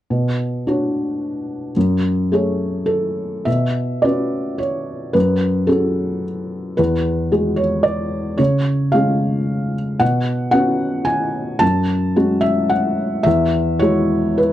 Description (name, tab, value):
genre	neoclassical minimalist piano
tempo	110 BPM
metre	3/4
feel	rubato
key	F# minor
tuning	A4 = 440 Hz
part	felt-muted upright piano	solo	0.1-14.5 s	E2 to A5	-16 LUFS	equal	none
room	little or no reverb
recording	dry, close 1970s-style studio recording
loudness	-16 LUFS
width	side -12 dB against mid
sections	0.1-3.5 A section; 3.5-14.5 B section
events	none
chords	0.1 Bmadd9; 1.8 F#madd9; 3.5 Bmadd9; 5.1 F#madd9; 6.8 Eadd9; 8.4 C#; 10.0 Bsus2; 11.6 F#madd9; 13.3 Eadd9